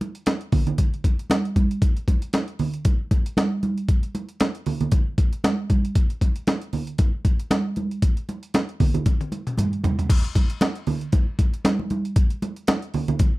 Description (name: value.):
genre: funk.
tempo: 116 BPM.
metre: 4/4.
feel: swing 56% on 16ths.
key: none.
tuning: none.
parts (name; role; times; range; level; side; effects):
breakbeat sampler-style drum kit; drums; 0.0-13.3 s; crash cymbal, hi-hat, kick drum, snare drum, toms; -20 LUFS; equal; overdrive.
congas; percussion; 0.0-13.3 s; none; -25 LUFS; right 2 dB; none.
room: little or no reverb.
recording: dry, close 1970s-style studio recording.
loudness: -20 LUFS.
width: side -19 dB against mid.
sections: 0.0-10.1 A section; 10.1-13.4 B section.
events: drum fill 9.1-10.1.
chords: none.